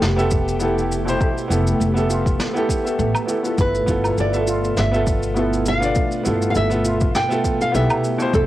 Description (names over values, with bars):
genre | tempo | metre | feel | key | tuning
sunset chillout | 101 BPM | 4/4 | swing 55% on 16ths | unclear | A4 = 440 Hz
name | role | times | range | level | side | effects
warm grand piano | accompaniment | 0.0-8.5 s | B2 to E5 | -22 LUFS | equal | auto-pan, cassette tape, analog delay
soft string machine | sustained chords | 0.0-8.5 s | B2 to G4 | -26 LUFS | equal | ensemble chorus, vintage 12-bit sampler grit, cassette tape
upright bass | bass | 0.0-8.5 s | F1 to B1 | -22 LUFS | equal | tube saturation
snare drum, shaker and woodblock | drums | 0.0-8.5 s | none | -27 LUFS | equal | cassette tape
electronic kick drum | drums | 0.3-8.5 s | none | -21 LUFS | equal | cassette tape
steel pan | arpeggios | 0.6-8.5 s | A3 to F4 | -30 LUFS | right 2 dB | cassette tape, analog delay
nylon-string guitar | melody | 3.6-8.5 s | A4 to G5 | -23 LUFS | equal | cassette tape, analog delay
room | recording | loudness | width
light reverb | home recording on cassette | -17 LUFS | side -14 dB against mid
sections
0.0-8.5 A section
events
none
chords
0.0 Fmaj9#11; 3.6 G13